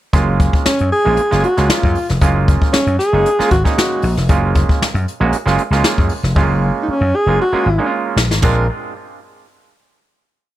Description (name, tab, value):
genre	funk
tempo	116 BPM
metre	4/4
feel	straight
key	unclear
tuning	A4 = 439 Hz
part	auto-wah clav	stabs	0.1-8.7 s	Ab3 to Gb4	-20 LUFS	right 5 dB	overdrive, plate reverb, analog delay
part	vintage slap bass	bass	0.1-8.7 s	F1 to Gb2	-16 LUFS	equal	none
part	jazz brush drum kit	drums	0.1-8.6 s	crash cymbal, hi-hat, kick drum, snare drum, toms	-16 LUFS	left 1 dB	none
part	breathy alto saxophone	melody	0.7-8.7 s	Db4 to Bb4	-16 LUFS	equal	plate reverb
room	light reverb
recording	none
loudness	-12 LUFS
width	side -14 dB against mid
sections	0.1-8.4 bridge; 8.4-10.5 final chord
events	drum fill 6.4-8.4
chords	0.1 Gbmaj7; 8.4 Bb7